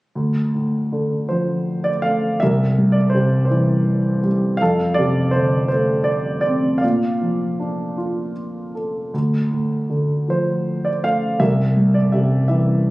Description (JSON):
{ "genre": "classical, lyrical solo piano", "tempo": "53 BPM (dotted quarters)", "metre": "6/8", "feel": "uneven beats, rubato", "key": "D minor", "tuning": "A4 = 441 Hz", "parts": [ { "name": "dark grand piano", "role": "solo", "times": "0.2-12.9 s", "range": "C2 to F5", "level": "-17 LUFS", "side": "equal", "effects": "none" } ], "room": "moderate scoring stage reverb, RT60 2.1 s", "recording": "recorded on a phone in the room, club reverb", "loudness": "-17 LUFS", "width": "side -20 dB against mid", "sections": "0.2-12.9 A section", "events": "none", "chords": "0.2 Dm; 2.4 C7; 4.6 F6; 6.8 Bbmaj7; 9.1 Dm; 11.4 C7" }